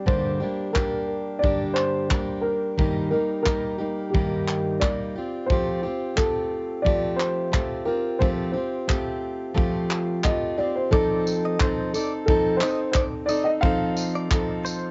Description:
acoustic pop; 88 BPM; 4/4; swing 55% on 16ths; A4 = 439 Hz
dark upright piano; melody; 0.0-14.9 s; G4 to F5; -29 LUFS; equal; cassette tape, plate reverb, tape echo
fingerpicked plugged-in steel-string acoustic guitar; accompaniment; 0.0-14.9 s; G2 to A4; -29 LUFS; equal
modern studio drum kit; drums; 0.1-14.8 s; handclaps, kick drum, tambourine; -28 LUFS; equal; cassette tape
direct-recorded clean electric guitar; arpeggios; 10.9-14.9 s; C5 to Eb5; -37 LUFS; equal; tremolo, plate reverb, tape echo
moderate booth ambience, RT60 0.2 s; home recording on cassette, nothing above 7.8 kHz; -24 LUFS; mono
0.0-10.9 A section; 10.9-14.9 B section
0.1 Gm; 2.8 Eb/G; 5.2 Fadd9; 10.9 F7
| 0.08 0.76 1.44 2.11 | 2.79 3.47 4.15 4.82 | 5.50 6.18 6.86 7.53 | 8.21 8.89 9.57 10.24 | 10.92 11.60 12.28 12.96 | 13.63 14.31

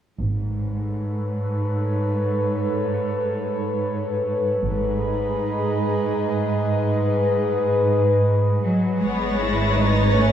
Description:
cinematic; 81 BPM; 3/4; straight; A4 = 440 Hz
warbly tape-like pad; sustained chords; 0.9-10.3 s; G#4 to D#5; -24 LUFS; left 1 dB; chorus, built-in reverb, phaser
warm studio cello section; bass; 0.2-10.3 s; G#2 to A3; -23 LUFS; right 1 dB
warm studio double bass section; bass; 0.2-0.9, 4.6-5.3, 9.0-10.3 s; G#1; -24 LUFS; right 1 dB
warm studio violin section; texture; 4.7-10.3 s; G#5 to A#6; -33 LUFS; left 1 dB
rich studio violin section; melody; 9.0-10.3 s; C#5; -28 LUFS; equal
rich studio violin section; second line; 9.0-10.3 s; B3 to E4; -26 LUFS; left 2 dB
rich studio viola section; accompaniment; 9.0-10.3 s; B4 to C#5; -26 LUFS; left 1 dB
wet recital hall reverb, RT60 1.5 s; dark, warm production; -20 LUFS; side -9 dB against mid
0.2-9.0 A section; 9.0-10.3 B section
0.2 Aadd9/G#; 4.6 G#m; 9.0 Aadd9/G#
| 0.21 0.95 1.70 | 2.44 3.18 3.91 | 4.63 5.35 6.08 | 6.81 7.54 8.29 | 9.04 9.78

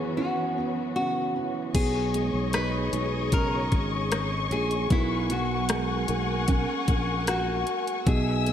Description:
pop ballad; 76 BPM; 4/4; straight; A4 = 440 Hz
nylon-string guitar; melody; 0.0-8.5 s; E4 to B4; -30 LUFS; left 1 dB
dark upright piano; accompaniment; 0.0-8.5 s; F#2 to D#4; -32 LUFS; right 4 dB
dark studio string section; sustained chords; 0.0-8.5 s; E3 to E6; -31 LUFS; left 3 dB
sustaining fretless electric bass; bass; 1.7-8.5 s; G#1 to B1; -29 LUFS; equal; lush chorus
pop drum kit; drums; 1.7-8.5 s; crash cymbal, hi-hat, kick drum, rim click; -27 LUFS; left 1 dB; overdrive
moderate lush hall reverb, RT60 1.9 s, small room reverb; dreamy mix soaked in reverb; -24 LUFS; side -10 dB against mid
0.0-1.7 A section; 1.7-8.5 B section
0.0 F#7sus4; 1.7 C#sus2/B; 4.9 F#add9/B
0.17 0.95 | 1.75 2.53 3.32 4.11 | 4.90 5.69 6.48 7.27 | 8.06

